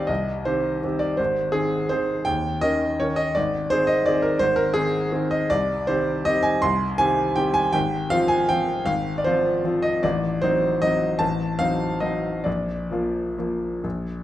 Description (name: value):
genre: classical, piano waltz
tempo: 123-178 BPM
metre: 3/4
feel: rubato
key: unclear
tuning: A4 = 440 Hz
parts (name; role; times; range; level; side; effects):
- clear grand piano; solo; 0.0-14.2 s; Ab1 to C6; -20 LUFS; equal; none
room: wet recital hall reverb, RT60 1.6 s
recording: dark, warm production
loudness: -20 LUFS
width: side -13 dB against mid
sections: 0.0-14.2 A section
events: none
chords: 0.0 Cm; 1.2 Ab; 2.3 Eb7; 3.4 Ab; 5.5 Cm; 7.8 Fm/Ab; 10.0 Adim7; 12.5 Bb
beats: | 0.09 0.46 0.83 | 1.19 1.54 1.91 | 2.27 2.63 3.00 | 3.37 3.71 4.07 | 4.42 4.76 5.14 | 5.51 5.88 6.26 | 6.63 7.00 7.38 | 7.76 8.13 8.51 | 8.88 9.27 9.66 | 10.04 10.42 10.82 | 11.21 11.60 12.02 | 12.46 12.91 13.38 | 13.84